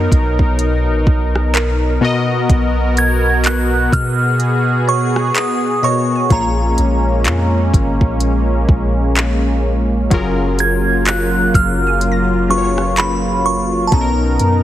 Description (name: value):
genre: contemporary R&B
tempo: 63 BPM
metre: 4/4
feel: swing 58% on 16ths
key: unclear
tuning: A4 = 437 Hz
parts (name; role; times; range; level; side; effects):
- glassy synth bell; melody; 0.0-14.6 s; A5 to Ab6; -19 LUFS; right 2 dB; chorus, tape echo
- warm analog keys; accompaniment; 0.0-14.6 s; Bb2 to Eb5; -21 LUFS; left 4 dB; chorus
- warm analog pad; sustained chords; 0.0-14.6 s; B2 to A#4; -20 LUFS; right 1 dB; chorus
- soft 808-style bass; bass; 0.0-14.6 s; Gb1 to Cb3; -17 LUFS; equal; none
- smooth R&B drum kit; drums; 0.1-14.6 s; handclaps, hi-hat, kick drum, rim click; -17 LUFS; equal; none
- glassy wavetable pluck; texture; 1.5-14.6 s; A#4 to Bb6; -29 LUFS; right 2 dB; chorus, tape echo
room: light reverb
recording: heavily compressed radio sound, multiband compression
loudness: -13 LUFS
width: side -12 dB against mid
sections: 0.0-14.6 A section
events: none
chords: 0.0 Bmaj7; 2.0 Abm7/Cb; 6.3 Bbm7; 10.1 Gbmaj7; 13.9 Bmaj7